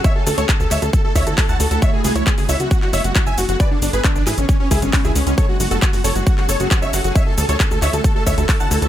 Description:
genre	uplifting trance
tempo	135 BPM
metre	4/4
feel	straight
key	F# minor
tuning	A4 = 440 Hz
part	dense compressed supersaw	melody	0.0-8.9 s	C#4 to A5	-22 LUFS	right 1 dB	sidechain pumping, dub echo
part	dark grand piano	second line	0.0-8.9 s	C#4 to A5	-28 LUFS	equal	sidechain pumping, dub echo
part	shimmering ambient pad	sustained chords	0.0-8.9 s	D3 to A4	-27 LUFS	equal	chorus, built-in reverb, sidechain pumping
part	big-room dance drum kit	drums	0.0-8.9 s	handclaps, hi-hat, shaker	-23 LUFS	left 1 dB	overdrive
part	electronic kick drum	drums	0.0-8.6 s	none	-17 LUFS	equal	overdrive
part	plucky analog bass	bass	0.3-8.9 s	F#1 to D2	-20 LUFS	equal	sidechain pumping
room	little or no reverb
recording	none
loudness	-14 LUFS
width	side -12 dB against mid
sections	0.0-8.9 A section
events	none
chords	0.0 Dadd9; 1.8 C#m7; 2.7 F#madd9; 3.6 G#dim; 4.5 C#m7; 5.4 F#madd9; 7.2 Dadd9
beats	| 0.04 0.49 0.93 1.38 | 1.82 2.27 2.71 3.15 | 3.60 4.04 4.49 4.93 | 5.38 5.82 6.27 6.71 | 7.16 7.60 8.04 8.49

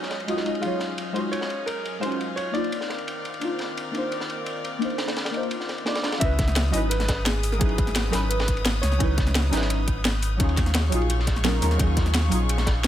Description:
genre	liquid drum and bass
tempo	172 BPM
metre	4/4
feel	straight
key	unclear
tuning	A4 = 438 Hz
part	deep mellow chord stab	accompaniment	0.0-12.9 s	F#3 to D#5	-28 LUFS	equal	chorus, phaser, cassette tape, digital delay
part	rich chamber string section	sustained chords	0.0-12.9 s	Eb3 to D#6	-34 LUFS	left 2 dB	none
part	crunchy breakbeat drum kit	drums	0.0-12.9 s	ride cymbal, snare drum	-32 LUFS	equal	high-pass filter on cymbals, high-pass filter on snare, high-pass filter on room
part	drum and bass drum kit	drums	0.1-12.9 s	hi-hat, snare drum	-27 LUFS	equal	overdrive, low-pass filter on hats, low-pass filter on snare
part	warm grand piano	melody	0.6-9.8 s	E#4 to E5	-31 LUFS	equal	vintage 12-bit sampler grit, dub echo
part	sub bass with octave	bass	6.2-12.9 s	G#1 to D#2	-24 LUFS	equal	none
part	electronic kick drum	drums	6.2-12.7 s	none	-24 LUFS	equal	overdrive
room	light reverb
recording	none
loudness	-22 LUFS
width	side -11 dB against mid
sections	0.0-6.2 A section; 6.2-12.9 B section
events	filter sweep on synth stab 0.0-6.2; drop 6.2-12.9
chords	0.0 D#m11; 2.7 Cm11; 6.2 C#m11; 10.4 D#m11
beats	0.28 | 0.63 0.98 1.33 1.68 | 2.03 2.38 2.72 3.07 | 3.42 3.77 4.12 4.47 | 4.82 5.17 5.51 5.86 | 6.21 6.56 6.91 7.26 | 7.61 7.96 8.31 8.65 | 9.00 9.35 9.70 10.05 | 10.40 10.75 11.10 11.45 | 11.79 12.14 12.49 12.84

